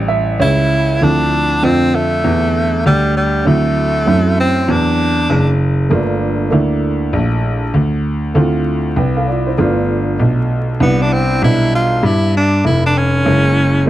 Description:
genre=hip hop, jazz-hop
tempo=98 BPM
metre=4/4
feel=swing 62% on 16ths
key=D minor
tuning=A4 = 439 Hz
part: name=dark upright piano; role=accompaniment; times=0.0-13.9 s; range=D3 to G5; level=-19 LUFS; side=right 2 dB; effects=none
part: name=warm baby grand piano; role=bass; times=0.0-13.9 s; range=F1 to G2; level=-14 LUFS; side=equal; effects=none
part: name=breathy tenor saxophone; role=melody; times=0.4-5.6, 10.8-13.9 s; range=G3 to F4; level=-16 LUFS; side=equal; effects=none
room=light reverb, small room ambience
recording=dark, warm production, vinyl crackle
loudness=-12 LUFS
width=side -14 dB against mid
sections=0.0-1.0 A section; 1.0-13.9 B section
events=upright piano solo 0.0-1.0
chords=0.0 A7; 1.0 Dm7; 3.5 D7; 5.9 Gm7; 8.4 Dm7; 9.6 G7; 10.8 Cmaj7; 13.3 F#9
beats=0.40 | 1.01 1.62 2.24 2.85 | 3.46 4.07 4.68 5.30 | 5.91 6.52 7.13 7.75 | 8.36 8.97 9.58 10.20 | 10.81 11.42 12.03 12.64 | 13.26 13.87

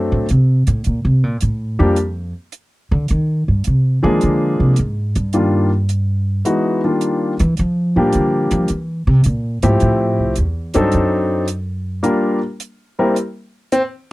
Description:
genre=jazz piano trio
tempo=107 BPM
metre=4/4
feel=swing 69% on 8ths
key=unclear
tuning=A4 = 440 Hz
part: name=warm concert grand piano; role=melody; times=0.0-13.8 s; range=Eb3 to Bb4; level=-16 LUFS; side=left 1 dB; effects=none
part: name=upright bass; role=bass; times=0.0-12.0 s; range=C2 to F3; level=-16 LUFS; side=equal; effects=none
part: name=hi-hat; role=drums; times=0.3-13.9 s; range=none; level=-31 LUFS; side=right 6 dB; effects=none
room=little or no reverb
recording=dry, close 1970s-style studio recording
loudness=-15 LUFS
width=side -19 dB against mid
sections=0.0-14.1 A section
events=upright bass solo 0.0-14.1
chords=0.0 D7; 0.8 Gm7 (rootless); 3.1 Fm7 (rootless); 4.2 Bb7; 5.3 Ebmaj9; 7.6 Gm7; 8.7 C7; 9.8 Fmaj7; 10.9 D7b9; 12.0 Gm7; 13.2 N.C.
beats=0.29 | 0.85 1.41 1.97 2.53 | 3.09 3.65 4.21 4.77 | 5.33 5.89 6.45 7.01 | 7.57 8.13 8.69 9.24 | 9.80 10.36 10.92 11.48 | 12.04 12.60 13.16 13.72

